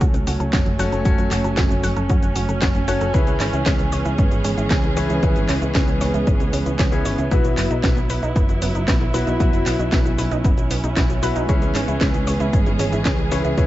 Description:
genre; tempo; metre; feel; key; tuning
italo disco; 115 BPM; 4/4; straight; C# minor; A4 = 439 Hz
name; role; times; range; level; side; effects
dark symphonic string section; sustained chords; 0.0-13.7 s; E3 to G#4; -24 LUFS; right 2 dB; none
analog pluck; arpeggios; 0.0-13.6 s; B3 to F#5; -30 LUFS; right 2 dB; chorus, tape echo
bright baby grand piano; stabs; 0.0-13.7 s; B3 to C#5; -27 LUFS; left 4 dB; tape echo
tight sequencer bass; bass; 0.0-13.7 s; F#1 to F#2; -23 LUFS; equal; none
electronic kick drum; drums; 0.0-13.7 s; none; -20 LUFS; equal; overdrive
house drum kit; drums; 0.0-13.7 s; cabasa, handclaps, hi-hat, snare drum; -27 LUFS; equal; none
room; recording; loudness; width
little or no reverb; dark, warm production, nothing above 7.8 kHz; -17 LUFS; side -15 dB against mid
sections
0.0-13.7 A section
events
none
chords
0.0 F#m; 3.1 C#m7; 7.3 Bsus4; 11.5 C#m7

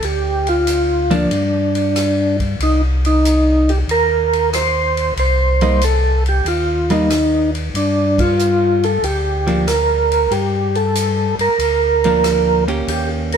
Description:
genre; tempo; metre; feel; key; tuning
soul jazz organ trio; 93 BPM; 4/4; swing 69% on 8ths; G minor; A4 = 439 Hz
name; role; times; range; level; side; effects
percussive tonewheel organ; melody; 0.0-13.4 s; D4 to C5; -16 LUFS; right 1 dB; slow rotary speaker, chorus vibrato
mellow tonewheel organ; bass; 0.0-13.4 s; C2 to G2; -19 LUFS; left 1 dB; slow rotary speaker
vintage drum kit; drums; 0.0-13.4 s; hi-hat, kick drum, ride cymbal, rim click; -26 LUFS; left 1 dB; none
hollow-body jazz guitar; accompaniment; 1.1-1.3, 5.6-13.4 s; F3 to G4; -19 LUFS; equal; none
room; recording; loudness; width
moderate stone room reverb, RT60 1.0 s; band playing live in one room; -14 LUFS; side -7 dB against mid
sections
0.0-13.4 A section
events
band accent 8.1-8.4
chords
0.0 G7(no3); 2.6 Cm7; 7.7 Gm7

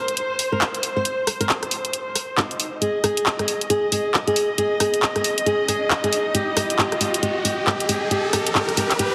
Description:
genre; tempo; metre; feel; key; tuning
UK garage, two-step garage; 136 BPM; 4/4; swing 61% on 16ths; unclear; A4 = 441 Hz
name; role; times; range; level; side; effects
flamenco guitar; melody; 0.0-9.1 s; Eb4 to C5; -26 LUFS; equal; dub echo
muted chamber violin section; sustained chords; 0.0-9.1 s; C5 to Eb5; -30 LUFS; equal; none
garage drum kit; drums; 0.1-9.1 s; handclaps, hi-hat, rim click; -24 LUFS; equal; none
riser; sound effects; 4.9-9.1 s; none; -31 LUFS; equal; none
room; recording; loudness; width
moderate plate reverb, RT60 2.2 s; heavily compressed radio sound; -22 LUFS; mono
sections
0.0-9.1 A section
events
build-up 0.0-9.1; riser 4.9-9.1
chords
none

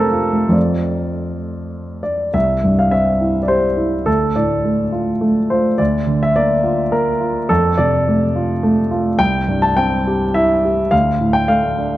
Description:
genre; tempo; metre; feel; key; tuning
neoclassical minimalist piano; 104 BPM; 3/4; uneven beats, rubato; unclear; A4 = 439 Hz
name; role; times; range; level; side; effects
warm grand piano; solo; 0.0-12.0 s; C2 to A5; -14 LUFS; equal; none
room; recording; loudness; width
moderate concert hall reverb, RT60 1.8 s; dark, warm production; -14 LUFS; side -15 dB against mid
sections
0.0-2.3 A section; 2.3-12.0 B section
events
none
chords
0.0 Fadd9; 2.3 C; 4.1 Dm; 5.8 Bb/D; 7.5 F; 9.2 C; 10.9 Dm

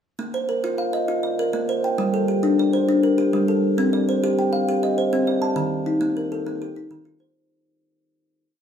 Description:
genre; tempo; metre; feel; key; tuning
southern african traditional, mbira-style interlocking cycle; 134 BPM (dotted quarters); 12/8; straight; Bb major; A4 = 442 Hz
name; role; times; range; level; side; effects
kalimba; solo; 0.2-7.5 s; Eb3 to A5; -19 LUFS; equal; none
room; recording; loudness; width
wet large studio reverb, RT60 0.9 s; band playing live in one room; -19 LUFS; side -8 dB against mid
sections
0.2-7.4 A section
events
fade-out 5.6-7.4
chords
0.2 Bb; 2.0 Gm; 3.8 Cm; 5.6 Eb

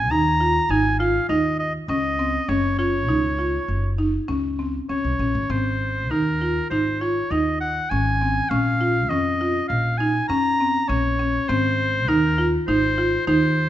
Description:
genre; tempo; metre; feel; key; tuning
contemporary instrumental, chamber music in an uneven meter; 100 BPM; 5/4; straight; Ab mixolydian; A4 = 440 Hz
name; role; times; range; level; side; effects
clear oboe; melody; 0.0-13.7 s; Bb4 to Bb5; -23 LUFS; equal; none
upright bass; bass; 0.0-13.7 s; Gb1 to F2; -25 LUFS; equal; none
buzzing marimba with medium hard mallets; arpeggios; 0.1-13.7 s; C4 to F4; -23 LUFS; equal; none
room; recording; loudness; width
moderate recital hall reverb, RT60 1.3 s; nothing above 7.7 kHz; -19 LUFS; side -12 dB against mid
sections
0.0-13.7 A section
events
none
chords
0.0 Ab5; 2.5 Gb5; 5.5 Ab; 8.5 Bbm; 11.5 Ab

